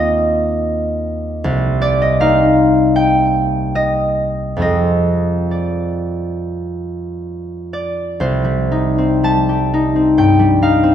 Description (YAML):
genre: classical, solo harp piece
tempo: 54-81 BPM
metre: 4/4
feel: rubato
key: C minor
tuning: A4 = 439 Hz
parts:
  - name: concert harp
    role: solo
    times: 0.0-10.9 s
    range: C2 to A5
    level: -14 LUFS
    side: equal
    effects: none
room: wet recital hall reverb, RT60 1.6 s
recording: heard from further back in the room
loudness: -13 LUFS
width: side -9 dB against mid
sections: 0.0-8.2 A section; 8.2-10.9 B section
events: none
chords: 0.0 Eb69; 1.4 Cm9; 4.6 Fm6; 8.2 Cmadd9